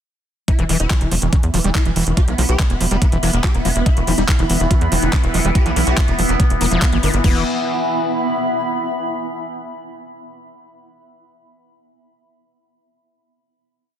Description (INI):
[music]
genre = psychedelic trance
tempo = 142 BPM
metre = 4/4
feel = straight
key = unclear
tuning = A4 = 440 Hz
[part]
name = swarming rave lead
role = melody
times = 0.5-7.4 s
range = E3 to G4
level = -24 LUFS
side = equal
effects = chorus, phaser, sidechain pumping, digital delay
[part]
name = screaming distorted acid line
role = riff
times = 0.5-7.4 s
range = D3 to F4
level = -24 LUFS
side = moving between left 7 dB and right 6 dB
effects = distortion, chorus, auto-pan, sidechain pumping, digital delay
[part]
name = electronic kick drum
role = drums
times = 0.5-7.3 s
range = none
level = -16 LUFS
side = equal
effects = none
[part]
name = garage drum kit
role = drums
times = 0.5-7.3 s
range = crash cymbal, handclaps, hi-hat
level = -24 LUFS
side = equal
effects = none
[part]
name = granular cloud pad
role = texture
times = 1.1-8.9 s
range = B3 to B5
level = -24 LUFS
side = right 1 dB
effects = built-in reverb, sidechain pumping
[part]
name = tight sequencer bass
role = bass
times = 0.6-7.4 s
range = E1 to E2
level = -19 LUFS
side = equal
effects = none
[part]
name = vowel-sweep wobble bass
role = second line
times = 0.8-2.7 s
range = E3 to B3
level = -37 LUFS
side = right 3 dB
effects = none
[part]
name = overtone-sweeping drone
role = sustained chords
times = 4.4-7.3 s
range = E3 to B3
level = -25 LUFS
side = equal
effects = chorus, built-in reverb, phaser, sidechain pumping
[sound]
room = light reverb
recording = dense, heavily limited modern master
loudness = -15 LUFS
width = side -10 dB against mid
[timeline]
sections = 0.5-7.2 drop; 7.2-8.9 final chord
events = drop 0.5-7.2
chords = 0.5 E5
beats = | 0.48 0.90 1.33 1.75 | 2.17 2.59 3.02 3.44 | 3.86 4.28 4.71 5.13 | 5.55 5.97 6.40 6.82 | 7.24 7.66 8.09 8.51